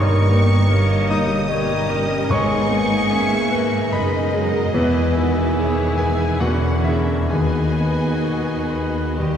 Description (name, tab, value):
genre	classical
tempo	63-76 BPM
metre	3/4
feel	rubato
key	G# minor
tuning	A4 = 440 Hz
part	clear concert grand piano	melody	0.0-9.4 s	D#2 to D#6	-20 LUFS	left 1 dB	none
part	rich symphonic violin section	melody	0.0-9.1 s	B4 to D#6	-29 LUFS	left 1 dB	none
part	silver concert flute	second line	0.0-9.4 s	G#5 to C#6	-32 LUFS	left 2 dB	none
part	warm clarinet	second line	0.0-9.4 s	G4 to C#5	-31 LUFS	right 1 dB	none
part	warm oboe	second line	0.0-9.4 s	B4 to E5	-32 LUFS	equal	none
part	warm symphonic violin section	second line	0.0-9.4 s	F#4 to E5	-30 LUFS	left 1 dB	none
part	dark bassoon	accompaniment	0.0-9.4 s	D3 to A#3	-28 LUFS	right 1 dB	none
part	rich symphonic viola section	accompaniment	0.0-9.4 s	G#3 to G4	-28 LUFS	right 1 dB	none
part	dark French horn section	sustained chords	0.0-9.4 s	A#3 to G#4	-30 LUFS	equal	none
part	rich symphonic double bass section	bass	0.0-9.4 s	E1 to D#2	-26 LUFS	right 1 dB	none
part	warm chamber cello section	bass	0.0-9.4 s	D#2 to G#2	-26 LUFS	right 2 dB	none
part	timpani	percussion	2.3-3.5, 9.2-9.3 s	G#2 to D#3	-28 LUFS	equal	none
room	wet scoring stage reverb, RT60 1.5 s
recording	heard from further back in the room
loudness	-16 LUFS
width	side -8 dB against mid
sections	0.0-9.4 A section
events	timpani fill 9.2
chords	0.0 D#7/G; 2.3 G#m; 4.7 E; 6.4 E7; 7.3 G#m/D#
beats	0.70 1.50 | 2.30 3.10 3.93 | 4.74 5.57 6.41 | 7.31 8.24 9.18